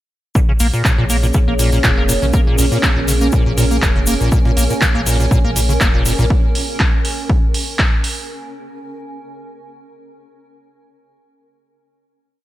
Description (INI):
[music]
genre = acid house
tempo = 121 BPM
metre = 4/4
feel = swing 54% on 16ths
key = Bb minor pentatonic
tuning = A4 = 440 Hz
[part]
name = dark analog pad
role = sustained chords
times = 0.8-6.3 s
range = Bb3 to Db5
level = -25 LUFS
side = equal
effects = chorus, phaser, sidechain pumping
[part]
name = liquid acid bass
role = riff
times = 0.4-6.3 s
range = Bb2 to Bb3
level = -20 LUFS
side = equal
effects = chorus, sidechain pumping, tape echo
[part]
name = electronic kick drum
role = drums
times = 0.4-7.9 s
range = none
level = -16 LUFS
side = equal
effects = none
[part]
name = egg shaker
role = percussion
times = 0.4-6.3 s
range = none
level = -25 LUFS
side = left 4 dB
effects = none
[part]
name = granular cloud pad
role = texture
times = 1.3-8.3 s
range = Db4 to Ab5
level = -24 LUFS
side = right 2 dB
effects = built-in reverb, sidechain pumping
[part]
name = warm sub bass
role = bass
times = 0.6-6.3 s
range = F1 to Bb1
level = -18 LUFS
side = equal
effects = sidechain pumping
[part]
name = booming analog drum machine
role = drums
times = 0.6-8.1 s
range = handclaps, hi-hat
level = -21 LUFS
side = right 1 dB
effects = none
[sound]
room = little or no reverb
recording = none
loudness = -13 LUFS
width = side -15 dB against mid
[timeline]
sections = 0.4-8.3 groove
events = none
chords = 0.4 Bbm7